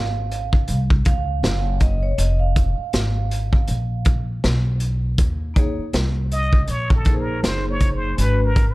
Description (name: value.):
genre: hip hop, jazz-hop.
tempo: 80 BPM.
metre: 4/4.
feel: swing 58% on 16ths.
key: Eb dorian.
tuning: A4 = 441 Hz.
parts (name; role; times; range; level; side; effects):
vibraphone with soft mallets; accompaniment; 0.0-8.5 s; Ab3 to F5; -28 LUFS; right 2 dB; none.
upright bass; bass; 0.0-8.7 s; F1 to Eb2; -21 LUFS; equal; none.
crunchy breakbeat drum kit; drums; 0.3-8.7 s; hi-hat, kick drum, snare drum; -19 LUFS; equal; none.
trumpet with plunger mute; melody; 6.3-8.7 s; A4 to Eb5; -26 LUFS; equal; none.
room: small room ambience.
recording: dark, warm production.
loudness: -18 LUFS.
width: side -20 dB against mid.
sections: 0.0-5.2 A section; 5.2-8.7 A section.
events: vibraphone solo 0.0-5.2; muted trumpet solo 5.2-8.7.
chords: 0.0 Gbsus2; 2.2 Fm7; 3.7 N.C.; 5.2 Ebm; 8.2 Abm7.